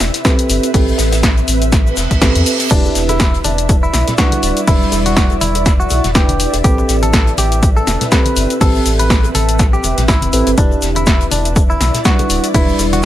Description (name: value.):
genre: deep house.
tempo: 122 BPM.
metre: 4/4.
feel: swing 56% on 16ths.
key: E minor.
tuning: A4 = 440 Hz.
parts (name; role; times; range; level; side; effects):
sub bass with octave; bass; 0.0-13.1 s; D1 to E2; -17 LUFS; equal; sidechain pumping.
punchy analog drum machine; drums; 0.0-13.0 s; crash cymbal, hi-hat, shaker, snare drum; -18 LUFS; left 1 dB; overdrive.
warm soul drum kit; drums; 0.0-13.1 s; hi-hat, shaker, snare drum; -27 LUFS; left 2 dB; sidechain pumping on hats, high-pass filter on hats, high-pass filter on snare, sidechain pumping on perc, high-pass filter on perc, high-pass filter on room.
ethereal airy pad; texture; 0.0-13.1 s; C4 to E5; -22 LUFS; equal; ensemble chorus, built-in reverb, tremolo, sidechain pumping.
mellow FM electric piano; stabs; 0.2-13.1 s; G3 to B4; -20 LUFS; right 1 dB; chorus, sidechain pumping, digital delay.
electronic kick drum; drums; 0.2-12.7 s; none; -13 LUFS; equal; overdrive.
reverse cymbal; sound effects; 1.9-2.7 s; none; -21 LUFS; right 6 dB; none.
direct-recorded clean electric guitar; melody; 2.7-13.1 s; D4 to B4; -20 LUFS; equal; tape echo.
congas and bongos; percussion; 2.7-13.0 s; none; -26 LUFS; left 3 dB; none.
room: small room ambience.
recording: none.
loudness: -11 LUFS.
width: side -13 dB against mid.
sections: 0.0-13.1 A section.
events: reverse cymbal 1.9-2.7.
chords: 0.0 Am9; 2.7 Em7; 6.6 Am9; 10.6 Em7.